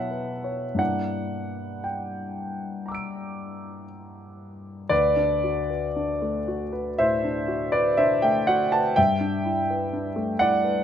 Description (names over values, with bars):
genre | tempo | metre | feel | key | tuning
classical, impressionist solo piano | 55-63 BPM | 4/4 | rubato | D mixolydian | A4 = 440 Hz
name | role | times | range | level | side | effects
warm grand piano | solo | 0.0-10.8 s | D2 to D7 | -23 LUFS | equal | none
room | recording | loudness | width
moderate recital hall reverb, RT60 1.5 s | close, detailed microphones | -22 LUFS | side -9 dB against mid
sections
0.0-4.9 A section; 4.9-10.8 B section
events
none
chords
0.0 Bsus24; 0.8 Gm6; 4.9 D6; 9.0 G69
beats
| 0.80 1.86 2.86 3.85 | 4.90 5.97 6.98 7.98 | 8.97 9.93